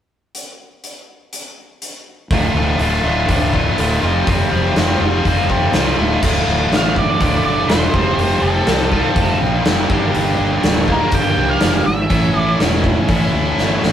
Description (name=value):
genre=classic rock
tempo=122 BPM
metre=4/4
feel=straight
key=D minor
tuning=A4 = 444 Hz
part: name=big rock drum kit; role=drums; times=0.3-13.9 s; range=crash cymbal, hi-hat, kick drum, snare drum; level=-19 LUFS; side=equal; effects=none
part: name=distorted electric guitar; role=riff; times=2.3-13.9 s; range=D2 to A4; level=-17 LUFS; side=equal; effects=overdrive
part: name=fuzz fingered electric bass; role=bass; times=2.3-13.9 s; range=D1 to D2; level=-20 LUFS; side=equal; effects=overdrive
part: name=octave-fuzz lead guitar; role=melody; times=6.8-12.6 s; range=A4 to G5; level=-20 LUFS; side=right 2 dB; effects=distortion
room=moderate studio reverb, RT60 0.5 s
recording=rough rehearsal-room recording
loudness=-13 LUFS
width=side -10 dB against mid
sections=0.4-2.3 A section; 2.3-6.2 B section; 6.2-13.9 C section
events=drum fill 13.6-13.9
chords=0.4 N.C.; 2.3 Dm; 4.0 Fsus2; 6.0 Dm; 7.9 Fadd9; 9.9 Gm; 12.1 A